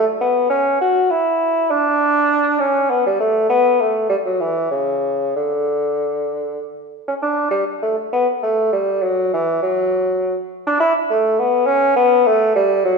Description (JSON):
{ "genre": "classical, baroque-style fantasia for unaccompanied bassoon", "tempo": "100 BPM", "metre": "3/4", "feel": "rubato", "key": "D major", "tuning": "A4 = 439 Hz", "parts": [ { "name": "warm bassoon", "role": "solo", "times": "0.0-13.0 s", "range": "C#3 to F#4", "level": "-15 LUFS", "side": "equal", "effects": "none" } ], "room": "wet scoring stage reverb, RT60 1.5 s", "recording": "recorded in a church or concert hall", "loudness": "-15 LUFS", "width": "side -4 dB against mid", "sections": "0.0-7.2 A section; 7.2-13.0 B section", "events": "none", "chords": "none" }